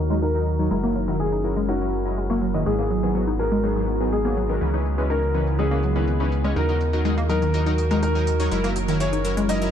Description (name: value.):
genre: progressive house.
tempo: 123 BPM.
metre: 4/4.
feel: straight.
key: G# minor.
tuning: A4 = 440 Hz.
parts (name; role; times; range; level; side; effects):
warm grand piano; melody; 0.0-9.7 s; F#4 to D#5; -28 LUFS; left 1 dB; digital delay.
evolving wavetable pad; sustained chords; 0.0-9.7 s; C#3 to A#4; -29 LUFS; equal; chorus, built-in reverb.
round analog bass; bass; 0.0-9.7 s; F#1 to D#2; -25 LUFS; equal; tube saturation.
analog pluck; arpeggios; 0.1-9.5 s; D#3 to D#4; -27 LUFS; equal; chorus, dub echo.
supersaw stab; stabs; 0.1-9.7 s; G#2 to D#5; -28 LUFS; left 2 dB; lush chorus, dub echo.
electronic hi-hat; drums; 0.1-9.7 s; none; -42 LUFS; right 4 dB; overdrive, low-pass filter on hats, low-pass filter on room.
room: light reverb.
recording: dark, warm production, low-pass filter.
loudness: -20 LUFS.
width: side -9 dB against mid.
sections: 0.0-9.7 A section.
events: filter sweep on drum 0.0-9.7; filter sweep on synth pluck 0.0-9.7; filter sweep on ambient pad 0.0-9.7; filter sweep 0.0-9.7.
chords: 0.0 D#m; 0.7 F#7; 2.7 G#m7; 4.6 C#m7; 6.6 D#m; 8.5 F#7.